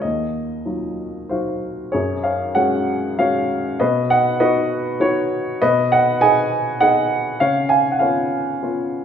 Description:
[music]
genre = classical, lyrical solo piano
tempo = 98 BPM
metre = 3/4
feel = rubato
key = unclear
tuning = A4 = 440 Hz
[part]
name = warm upright piano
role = solo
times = 0.0-9.0 s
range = Eb2 to G#5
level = -17 LUFS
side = equal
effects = none
[sound]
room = wet recital hall reverb, RT60 1.4 s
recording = recorded in a church or concert hall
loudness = -17 LUFS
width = side -8 dB against mid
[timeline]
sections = 0.0-1.9 A section; 1.9-9.0 B section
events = none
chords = 0.0 Ebmadd9; 1.9 F#sus2; 3.8 B; 5.6 G#m/B; 7.4 C#7

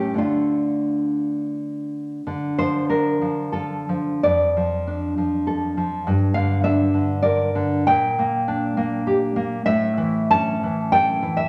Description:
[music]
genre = romantic piece for solo classical guitar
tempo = 80-105 BPM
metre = 3/4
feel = rubato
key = D minor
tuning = A4 = 440 Hz
[part]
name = nylon-string guitar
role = solo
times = 0.0-11.5 s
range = F2 to A5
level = -22 LUFS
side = equal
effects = none
[sound]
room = wet large studio reverb, RT60 1.2 s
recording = none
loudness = -22 LUFS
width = mono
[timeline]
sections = 0.0-2.3 A section; 2.3-11.5 B section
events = none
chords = 0.2 Dm; 4.2 Dm/F; 6.1 Gm; 7.9 Gm/Bb; 9.7 A

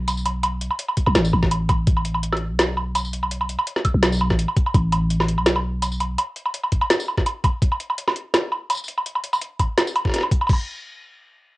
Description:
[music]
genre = half-time drum and bass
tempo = 167 BPM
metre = 4/4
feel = swing 53% on 16ths, half-time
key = unclear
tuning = A4 = 440 Hz
[part]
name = growling 808-style bass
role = bass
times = 0.0-6.2 s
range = A1 to B1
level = -22 LUFS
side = equal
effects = none
[part]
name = drum and bass drum kit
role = drums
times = 0.1-10.6 s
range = crash cymbal, hi-hat, snare drum, tambourine, woodblock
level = -21 LUFS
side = equal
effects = none
[part]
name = electronic kick drum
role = drums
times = 1.0-10.6 s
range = none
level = -20 LUFS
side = equal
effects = none
[sound]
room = light reverb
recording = home recording on cassette, nothing above 10.8 kHz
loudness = -19 LUFS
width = side -20 dB against mid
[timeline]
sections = 0.0-10.5 A section; 10.5-11.6 B section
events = drop 0.0-10.5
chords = none

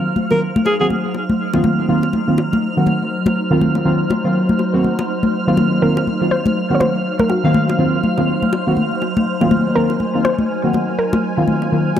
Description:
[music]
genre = deep house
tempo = 122 BPM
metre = 4/4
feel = swing 59% on 16ths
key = Eb dorian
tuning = A4 = 438 Hz
[part]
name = soft string machine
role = sustained chords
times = 0.0-12.0 s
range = Gb3 to Bb5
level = -22 LUFS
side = equal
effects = ensemble chorus
[part]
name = deep mellow chord stab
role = stabs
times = 0.0-11.9 s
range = Eb3 to F5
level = -18 LUFS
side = equal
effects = lush chorus, dub echo
[part]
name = analog string pad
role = texture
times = 0.0-12.0 s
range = F6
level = -27 LUFS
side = right 3 dB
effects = ensemble chorus
[part]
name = congas and bongos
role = percussion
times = 0.2-12.0 s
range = none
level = -20 LUFS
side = left 2 dB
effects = analog delay
[part]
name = clear alto saxophone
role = melody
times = 0.3-0.9 s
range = Ab4 to Bb4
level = -20 LUFS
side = equal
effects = vintage 12-bit sampler grit, dub echo
[part]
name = soft round pluck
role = melody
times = 5.8-12.0 s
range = Gb4 to Db5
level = -22 LUFS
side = equal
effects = chorus, dub echo
[sound]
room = moderate spring reverb, RT60 1.1 s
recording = echo-heavy mix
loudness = -14 LUFS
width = side -10 dB against mid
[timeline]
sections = 0.0-12.0 A section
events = filter sweep on string machine 0.0-12.0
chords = 0.0 Ebm69

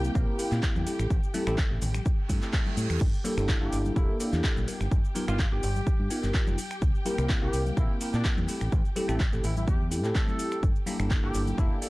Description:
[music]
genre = filtered disco house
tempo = 126 BPM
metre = 4/4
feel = swing 54% on 16ths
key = G dorian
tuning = A4 = 441 Hz
[part]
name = bell-like tine electric piano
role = accompaniment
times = 0.0-11.9 s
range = A3 to Bb4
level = -32 LUFS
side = equal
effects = phaser, sidechain pumping
[part]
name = warm studio violin section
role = sustained chords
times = 0.0-11.9 s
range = G4 to G5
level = -42 LUFS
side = left 1 dB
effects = vintage 12-bit sampler grit, sidechain pumping
[part]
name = fingered electric bass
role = bass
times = 0.0-11.7 s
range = E1 to Bb2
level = -29 LUFS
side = equal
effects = sidechain pumping
[part]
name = house drum kit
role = drums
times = 0.0-11.9 s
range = crash cymbal, finger snaps, handclaps, hi-hat, shaker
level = -36 LUFS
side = equal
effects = sidechain pumping on perc, sidechain pumping on hats, sidechain pumping on cymbals
[part]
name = maracas and congas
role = percussion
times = 0.0-11.9 s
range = none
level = -40 LUFS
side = left 4 dB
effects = sidechain pumping on perc
[part]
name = electronic kick drum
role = drums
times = 0.2-11.7 s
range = none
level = -26 LUFS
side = equal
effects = none
[part]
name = reverse cymbal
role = sound effects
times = 2.2-3.0 s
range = none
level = -41 LUFS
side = right 6 dB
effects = none
[part]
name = warm horn section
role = melody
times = 3.6-11.8 s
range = D4 to A4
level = -39 LUFS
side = equal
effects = vintage 12-bit sampler grit, sidechain pumping, analog delay
[sound]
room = digital ambience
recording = dry, gritty hardware recording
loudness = -25 LUFS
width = side -21 dB against mid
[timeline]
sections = 0.0-11.9 A section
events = reverse cymbal 2.2-3.0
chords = 0.0 C7; 0.9 Am7; 3.0 Gm69; 4.7 G7alt; 6.6 C7; 8.5 Am7; 10.6 Gm69

